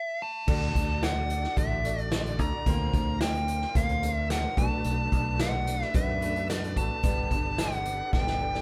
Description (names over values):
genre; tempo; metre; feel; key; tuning
folk rock and heartland rock; 110 BPM; 4/4; straight; D major; A4 = 445 Hz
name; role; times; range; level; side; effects
dark smooth lead guitar; melody; 0.0-8.6 s; D5 to Bb5; -34 LUFS; equal; overdrive
picked steel-string acoustic guitar; accompaniment; 0.5-8.6 s; B2 to B4; -40 LUFS; equal; none
warm baby grand piano; accompaniment; 0.5-8.6 s; D4 to D5; -46 LUFS; equal; none
tonewheel organ; sustained chords; 0.5-8.6 s; D4 to D5; -44 LUFS; equal; slow rotary speaker, overdrive
fingered electric bass; bass; 0.5-8.6 s; G1 to F#2; -34 LUFS; equal; none
unplugged drum kit; drums; 0.5-8.6 s; crash cymbal, hi-hat, kick drum, snare drum; -32 LUFS; equal; none
room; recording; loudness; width
light reverb; band playing live in one room; -28 LUFS; mono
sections
0.5-8.6 A section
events
stop 0.0-0.5; drum fill 8.1-8.6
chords
0.5 D; 2.7 Bbadd9/D; 4.6 Bm7; 7.0 Gadd9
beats
| 0.48 1.03 1.57 2.12 | 2.67 3.21 3.76 4.31 | 4.85 5.40 5.95 6.49 | 7.04 7.59 8.13